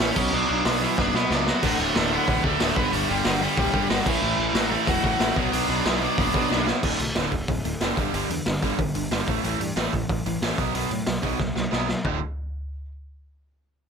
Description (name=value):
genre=punk rock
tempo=184 BPM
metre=4/4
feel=straight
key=D major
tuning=A4 = 444 Hz
part: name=biting overdriven guitar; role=melody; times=0.0-6.7 s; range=E3 to D5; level=-27 LUFS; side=left 1 dB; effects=none
part: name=overdriven electric guitar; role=riff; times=0.0-12.2 s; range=D2 to B3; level=-28 LUFS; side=right 15 dB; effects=none
part: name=overdriven semi-hollow guitar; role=riff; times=0.0-12.2 s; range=D2 to B3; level=-29 LUFS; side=left 15 dB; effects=none
part: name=fuzz picked electric bass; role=bass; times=0.0-12.2 s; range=D1 to B2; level=-30 LUFS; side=equal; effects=overdrive
part: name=raw garage drum kit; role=drums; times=0.0-12.1 s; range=crash cymbal, hi-hat, kick drum, snare drum, toms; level=-26 LUFS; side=equal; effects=none
part: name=tight distorted guitar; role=riff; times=1.6-6.7 s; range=D2 to B3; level=-31 LUFS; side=right 1 dB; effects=distortion
room=light reverb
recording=none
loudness=-21 LUFS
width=side -6 dB against mid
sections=0.0-6.8 A section; 6.8-12.0 B section; 12.0-13.3 C section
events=drum fill 1.0-1.6, 6.5-6.8, 11.4-12.0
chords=0.2 Bm; 1.6 D; 2.8 G; 4.1 A5; 5.4 Bm; 6.8 D5; 8.0 G5; 9.3 A5; 10.6 B5; 12.0 D5